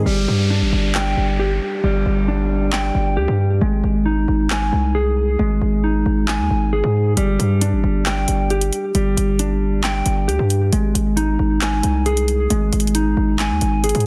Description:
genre	hip hop, trap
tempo	135 BPM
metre	4/4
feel	half-time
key	unclear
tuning	A4 = 441 Hz
part	mellow electric guitar	arpeggios	0.0-14.1 s	G3 to Ab5	-22 LUFS	equal	low-pass filter, tape echo
part	distorted 808-style bass	bass	0.0-14.1 s	G1 to Ab2	-21 LUFS	equal	distortion
part	downlifter	sound effects	0.1-3.6 s	none	-32 LUFS	equal	none
part	trap drum kit	drums	0.9-14.1 s	handclaps, hi-hat	-27 LUFS	equal	overdrive
room	light reverb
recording	dense, heavily limited modern master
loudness	-18 LUFS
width	mono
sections	0.1-14.1 A section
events	break 0.1-7.2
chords	0.1 G5; 3.6 Ab; 7.2 G5; 10.7 Ab

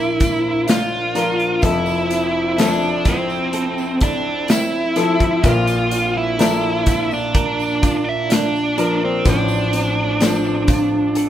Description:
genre	pop ballad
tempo	63 BPM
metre	4/4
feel	straight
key	unclear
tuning	A4 = 440 Hz
part	dark smooth lead guitar	melody	0.0-11.3 s	C4 to F5	-19 LUFS	right 1 dB	overdrive
part	warm grand piano	accompaniment	0.0-11.3 s	F1 to C5	-22 LUFS	left 4 dB	none
part	glassy FM pad	sustained chords	0.0-11.3 s	A2 to D5	-29 LUFS	left 1 dB	none
part	direct-recorded clean electric guitar	arpeggios	0.0-11.3 s	A2 to Bb4	-26 LUFS	right 4 dB	none
part	modern studio drum kit	drums	0.2-11.3 s	hi-hat, kick drum, snare drum	-19 LUFS	equal	none
part	tambourine	percussion	0.2-10.9 s	none	-36 LUFS	left 4 dB	none
room	moderate stone room reverb, RT60 1.3 s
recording	band playing live in one room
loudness	-15 LUFS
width	side -11 dB against mid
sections	0.0-11.3 A section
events	none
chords	0.0 Bb; 1.6 Fmaj7; 5.4 Bb; 9.3 Dm7/A

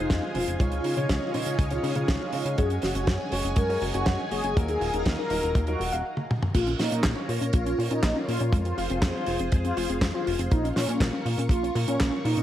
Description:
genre	italo disco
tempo	121 BPM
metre	4/4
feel	straight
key	Bb minor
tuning	A4 = 441 Hz
part	mellow synth brass	melody	0.0-12.4 s	Db4 to Bb4	-30 LUFS	left 1 dB	chorus, tape echo
part	string machine, full ensemble	sustained chords	0.0-12.4 s	Db4 to Eb6	-34 LUFS	equal	ensemble chorus
part	warbly dusty pluck	arpeggios	0.0-12.4 s	Ab3 to F5	-34 LUFS	left 2 dB	chorus, cassette tape, digital delay
part	warm concert grand piano	stabs	0.0-5.9 s	Db3 to Db5	-34 LUFS	right 1 dB	none
part	chorused synth bass	bass	0.0-12.4 s	Eb1 to Db3	-30 LUFS	equal	none
part	damped 70s drum kit	drums	0.1-12.4 s	crash cymbal, handclaps, hi-hat, snare drum, toms	-30 LUFS	right 1 dB	gated reverb
part	kick drum	drums	0.1-12.1 s	none	-24 LUFS	equal	none
room	light reverb, small room ambience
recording	vinyl crackle, faint mains hum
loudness	-23 LUFS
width	side -12 dB against mid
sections	0.0-6.5 A section; 6.5-12.4 B section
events	filter sweep on synth arpeggio sound 0.0-6.5; stop 6.1-6.5; drum fill 6.2-6.5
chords	0.0 Fm7; 0.6 Dbadd9; 2.6 Gbsus2; 4.6 Ebmadd9; 6.5 Bbm; 8.5 Fm; 10.5 Bbm

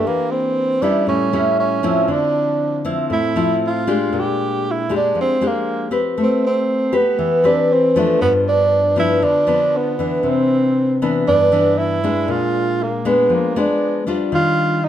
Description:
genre	bossa nova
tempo	118 BPM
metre	4/4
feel	straight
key	unclear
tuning	A4 = 441 Hz
part	breathy tenor saxophone	melody	0.0-14.9 s	A3 to G4	-18 LUFS	right 3 dB	plate reverb
part	nylon-string guitar	accompaniment	0.0-14.9 s	G2 to B4	-18 LUFS	left 2 dB	none
room	wet studio reverb, RT60 0.5 s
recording	none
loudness	-15 LUFS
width	side -10 dB against mid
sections	0.0-14.3 A section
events	none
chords	0.0 Em7b5; 1.1 A7; 2.1 Dm9; 4.1 Bb13; 6.2 Am9; 8.2 G7; 10.2 Cmaj9; 12.3 Bb7b9; 14.3 Ebmaj9

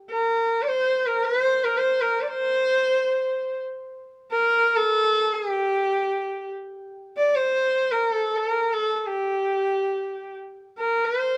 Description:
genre	indian classical, Hindustani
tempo	free time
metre	none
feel	none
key	unclear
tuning	A4 = 438 Hz
part	rich sarangi	solo	0.1-11.4 s	G4 to D5	-24 LUFS	equal	none
room	light reverb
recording	none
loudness	-23 LUFS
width	mono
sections	0.0-6.8 A section; 6.8-11.4 A section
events	none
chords	none

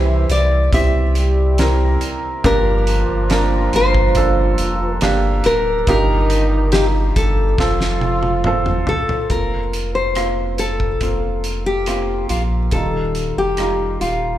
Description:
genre	pop ballad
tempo	70 BPM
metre	4/4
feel	straight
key	unclear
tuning	A4 = 440 Hz
part	nylon-string guitar	melody	0.0-14.4 s	F4 to E5	-20 LUFS	left 2 dB	slapback echo
part	warm French horn section	second line	0.0-8.8 s	Eb3 to G4	-24 LUFS	right 2 dB	slapback echo, digital delay
part	felt-muted upright piano	accompaniment	0.0-14.4 s	G2 to Bb4	-22 LUFS	right 3 dB	slapback echo
part	warm sub bass	bass	0.0-14.4 s	D1 to C2	-19 LUFS	equal	none
part	loose indie drum kit	drums	0.3-14.2 s	hi-hat, kick drum, rim click, snare drum, toms	-23 LUFS	equal	none
room	light reverb, studio ambience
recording	live gig heard through the venue's PA, club reverb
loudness	-15 LUFS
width	side -12 dB against mid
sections	0.0-9.3 A section; 9.3-14.4 B section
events	drum fill 7.6-9.3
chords	0.0 C; 2.4 Gm; 5.9 Ebadd9/G; 7.6 F; 9.3 Fsus4; 12.7 Ebadd9

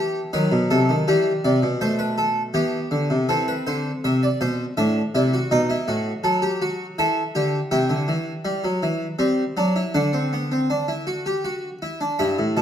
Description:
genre	classical, baroque-style 3-part fugue for harpsichord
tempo	81 BPM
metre	3/4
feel	straight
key	unclear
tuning	A4 = 437 Hz
part	harpsichord	solo	0.0-12.6 s	G2 to B5	-20 LUFS	equal	none
room	moderate recital hall reverb, RT60 1.4 s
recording	none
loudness	-20 LUFS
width	side -9 dB against mid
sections	0.0-3.3 A section; 3.3-12.2 B section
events	none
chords	0.3 B7; 1.1 Em; 3.3 C; 4.8 F#m7b5/A; 5.5 B7; 7.0 Em; 7.7 C (rootless); 9.2 C/G; 9.9 D

